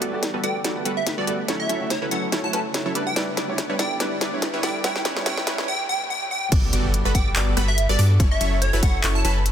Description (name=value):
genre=future bass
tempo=143 BPM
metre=4/4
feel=swing 55% on 16ths, half-time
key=unclear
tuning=A4 = 439 Hz
part: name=warm concert grand piano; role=accompaniment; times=0.0-5.7 s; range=G3 to E5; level=-32 LUFS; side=right 2 dB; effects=sidechain pumping, tape echo
part: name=ethereal airy pad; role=sustained chords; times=0.0-5.7 s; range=C#3 to G4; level=-37 LUFS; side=equal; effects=ensemble chorus, built-in reverb, sidechain pumping
part: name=supersaw stab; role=riff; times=0.0-9.4 s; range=F#3 to D5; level=-27 LUFS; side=right 1 dB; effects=sidechain pumping, low-pass filter
part: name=saturated sub bass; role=bass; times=0.0-9.5 s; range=E1 to G2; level=-21 LUFS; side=equal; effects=sidechain pumping, high-pass filter
part: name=trap drum kit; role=drums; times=0.0-9.5 s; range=crash cymbal, handclaps, hi-hat, rim click, snare drum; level=-27 LUFS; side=left 1 dB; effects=high-pass filter on hats, small room ambience, high-pass filter on snare, high-pass filter on cymbals
part: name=plucky unison lead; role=melody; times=0.4-9.3 s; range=C#5 to A5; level=-27 LUFS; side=equal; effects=phaser, sidechain pumping, ping-pong delay
part: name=wide unison pluck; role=arpeggios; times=6.5-9.4 s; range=B5 to D6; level=-33 LUFS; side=right 1 dB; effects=phaser, sidechain pumping
part: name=electronic kick drum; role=drums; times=6.5-8.9 s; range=none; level=-20 LUFS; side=equal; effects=small room ambience
part: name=impact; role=sound effects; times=6.5-8.2 s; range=none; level=-34 LUFS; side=left 1 dB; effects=none
room=light reverb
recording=dense, heavily limited modern master, high-pass filter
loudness=-20 LUFS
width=side -9 dB against mid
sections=0.0-6.5 A section; 6.5-9.5 B section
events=build-up 0.0-6.5; drum fill 0.0-5.7; filter sweep on supersaw synth 0.0-6.5; filter sweep 0.0-6.5; drop 6.5-9.5; impact 6.5-8.2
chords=0.0 Gmaj9; 1.5 F#m7; 3.0 Em7; 4.8 A9; 6.5 Gmaj9; 8.2 F#m7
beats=0.23 0.65 1.07 | 1.49 1.91 2.32 2.74 | 3.16 3.58 4.00 4.42 | 4.84 5.26 5.68 6.10 | 6.52 6.94 7.36 7.78 | 8.20 8.62 9.04 9.46